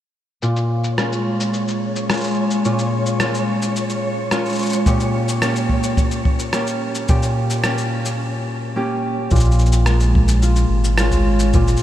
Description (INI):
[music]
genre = folktronica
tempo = 108 BPM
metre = 4/4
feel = straight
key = Bb dorian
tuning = A4 = 439 Hz
[part]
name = concert harp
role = arpeggios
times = 0.4-11.8 s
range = Bb2 to G4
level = -19 LUFS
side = equal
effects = low-pass filter, analog delay
[part]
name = electronic cabasa and rim click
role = drums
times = 0.4-11.8 s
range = none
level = -25 LUFS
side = equal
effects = low-pass filter on perc, low-pass filter on snare, low-pass filter on room
[part]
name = flickering grainy texture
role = texture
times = 0.9-8.2 s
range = Db5 to Db6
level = -29 LUFS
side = equal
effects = built-in reverb
[part]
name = kick drum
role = drums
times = 4.9-11.6 s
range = none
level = -18 LUFS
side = equal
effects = none
[part]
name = warm sub bass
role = bass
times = 9.3-11.8 s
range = Ab1 to Bb1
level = -16 LUFS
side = equal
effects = none
[sound]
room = moderate huge ambient reverb, RT60 7.5 s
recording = dreamy mix soaked in reverb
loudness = -16 LUFS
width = side -12 dB against mid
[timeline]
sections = 0.4-9.3 A section; 9.3-11.8 B section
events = filter sweep on harp 0.4-9.3; break 8.2-9.3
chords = 0.4 Bbm7; 4.9 Bbm6; 9.3 Bbm7